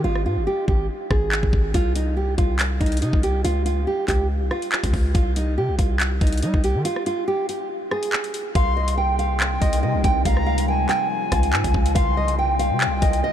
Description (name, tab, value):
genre	hip hop, drill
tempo	141 BPM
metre	4/4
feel	half-time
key	C phrygian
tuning	A4 = 440 Hz
part	nylon-string guitar	melody	0.0-13.3 s	Eb4 to G5	-24 LUFS	right 2 dB	analog delay
part	distorted 808-style bass	bass	0.0-13.2 s	Ab1 to G3	-23 LUFS	equal	distortion
part	drill drum kit	drums	0.2-13.2 s	handclaps, hi-hat, kick drum, rim click	-23 LUFS	equal	none
part	concert flute	second line	8.6-13.3 s	G5 to C6	-26 LUFS	left 5 dB	analog delay
part	deep dark ambient pad	sustained chords	9.1-13.3 s	C3 to F4	-28 LUFS	left 1 dB	chorus, built-in reverb
room	light reverb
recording	none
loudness	-19 LUFS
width	side -10 dB against mid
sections	0.0-8.6 A section; 8.6-13.3 B section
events	break 0.0-1.7, 6.8-8.6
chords	0.0 Fmadd9/Ab; 1.7 Cmadd11; 3.4 Db; 5.1 Cm; 6.8 N.C.; 8.6 Cm7; 10.3 Db; 12.0 Cm7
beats	| 0.04 0.47 0.89 1.32 | 1.74 2.17 2.60 3.02 | 3.45 3.87 4.30 4.72 | 5.15 5.57 6.00 6.42 | 6.85 7.28 7.70 8.13 | 8.55 8.98 9.40 9.83 | 10.26 10.68 11.11 11.53 | 11.96 12.38 12.81 13.23